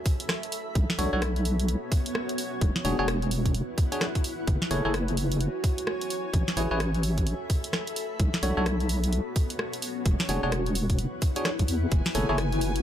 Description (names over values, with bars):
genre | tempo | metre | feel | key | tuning
UK garage, two-step garage | 129 BPM | 4/4 | swing 62% on 16ths | unclear | A4 = 441 Hz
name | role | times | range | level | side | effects
granular cloud pad | texture | 0.0-12.8 s | B3 to B5 | -33 LUFS | left 1 dB | built-in reverb, sidechain pumping
electronic kick drum | drums | 0.1-12.0 s | none | -26 LUFS | equal | none
punchy analog drum machine | drums | 0.1-12.8 s | hi-hat, rim click, snare drum | -32 LUFS | equal | none
deep soft wobble bass | bass | 0.8-12.8 s | E1 to E2 | -27 LUFS | equal | chorus, tube saturation, sidechain pumping
bell-like tine electric piano | stabs | 1.0-12.4 s | D4 to C#5 | -30 LUFS | equal | phaser, ping-pong delay
warm chamber violin section | sustained chords | 11.9-12.8 s | G#5 | -38 LUFS | right 3 dB | sidechain pumping
room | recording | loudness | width
digital ambience | none | -25 LUFS | side -10 dB against mid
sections
0.0-12.8 A section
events
none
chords
0.0 Asus2; 0.5 B7(no3); 2.4 E13; 4.5 F#7sus2; 6.1 Amaj9; 8.0 B7(no3); 9.8 E13; 11.9 F#m9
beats
0.29 | 0.75 1.22 1.68 2.15 | 2.61 3.08 3.54 4.01 | 4.47 4.94 5.41 5.87 | 6.33 6.80 7.27 7.73 | 8.20 8.66 9.13 9.59 | 10.06 10.52 10.99 11.45 | 11.92 12.38